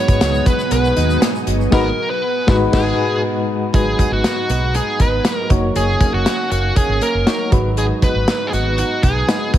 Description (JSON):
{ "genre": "1980s-style pop", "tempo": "119 BPM", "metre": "4/4", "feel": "straight", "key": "G# minor", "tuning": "A4 = 441 Hz", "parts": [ { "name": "smooth overdriven lead guitar", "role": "melody", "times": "0.0-9.5 s", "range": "F#4 to C#5", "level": "-20 LUFS", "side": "equal", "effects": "tape echo" }, { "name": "soft electric-piano-like synth keys", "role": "accompaniment", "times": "0.0-9.6 s", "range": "G#2 to C#5", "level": "-22 LUFS", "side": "left 3 dB", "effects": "chorus, tremolo" }, { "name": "string machine, cellos", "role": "sustained chords", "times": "0.0-3.7 s", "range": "B3 to D#6", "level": "-25 LUFS", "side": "left 1 dB", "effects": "phaser, ensemble chorus" }, { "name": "direct-recorded clean electric guitar", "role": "riff", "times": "0.0-9.6 s", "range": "F#3 to F#4", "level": "-25 LUFS", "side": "right 7 dB", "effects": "analog chorus" }, { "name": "mellow fretless electric bass", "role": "bass", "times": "0.1-9.6 s", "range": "D#1 to G#2", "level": "-20 LUFS", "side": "equal", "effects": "none" }, { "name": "modern studio drum kit", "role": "drums", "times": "0.1-9.6 s", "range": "crash cymbal, hi-hat, kick drum, snare drum", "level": "-18 LUFS", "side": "equal", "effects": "none" }, { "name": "tube shaker", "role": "percussion", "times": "0.1-1.7 s", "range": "none", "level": "-40 LUFS", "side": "left 7 dB", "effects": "none" } ], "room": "light reverb, studio reverb", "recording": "none", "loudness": "-14 LUFS", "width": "side -12 dB against mid", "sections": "0.0-3.7 A section; 3.7-9.6 B section", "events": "band accent 1.7-3.7", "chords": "0.0 G#m7; 5.5 D#m7/F#; 7.5 G#m7" }